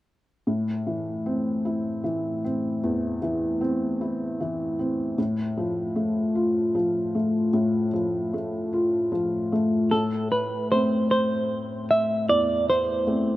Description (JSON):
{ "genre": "folk", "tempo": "76 BPM", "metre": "3/4", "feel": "straight", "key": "A minor", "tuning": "A4 = 439 Hz", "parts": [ { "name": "felt-muted upright piano", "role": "accompaniment", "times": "0.5-13.4 s", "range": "E2 to F4", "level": "-24 LUFS", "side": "left 1 dB", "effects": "none" }, { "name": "semi-hollow electric guitar", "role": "melody", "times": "9.9-13.4 s", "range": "A4 to E5", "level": "-23 LUFS", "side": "right 2 dB", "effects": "tremolo" } ], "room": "light reverb", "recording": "none", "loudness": "-22 LUFS", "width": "side -16 dB against mid", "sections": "0.5-9.9 A section; 9.9-13.4 B section", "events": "none", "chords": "0.5 Am; 5.2 F/A; 9.9 Am" }